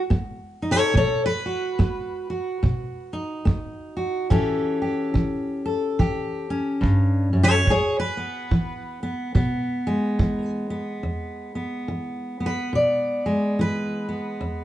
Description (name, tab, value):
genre	acoustic country blues, solo or duo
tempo	71 BPM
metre	4/4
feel	swing 60% on 8ths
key	unclear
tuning	A4 = 441 Hz
part	fingerpicked steel-string acoustic guitar	melody	0.0-14.6 s	E2 to D5	-22 LUFS	equal	plate reverb
part	kick drum	drums	0.1-10.4 s	none	-23 LUFS	right 1 dB	none
room	wet studio reverb, RT60 0.6 s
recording	heard from further back in the room, nothing above 10.5 kHz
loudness	-21 LUFS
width	side -13 dB against mid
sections	0.0-11.0 A section; 11.0-14.6 B section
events	steel-string acoustic guitar solo 0.0-11.0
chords	0.0 B; 4.3 A7; 7.7 E; 11.0 E7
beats	0.12 | 0.96 1.80 2.64 3.48 | 4.32 5.16 6.00 6.84 | 7.68 8.52 9.36 10.20 | 11.05 11.89 12.73 13.58 | 14.42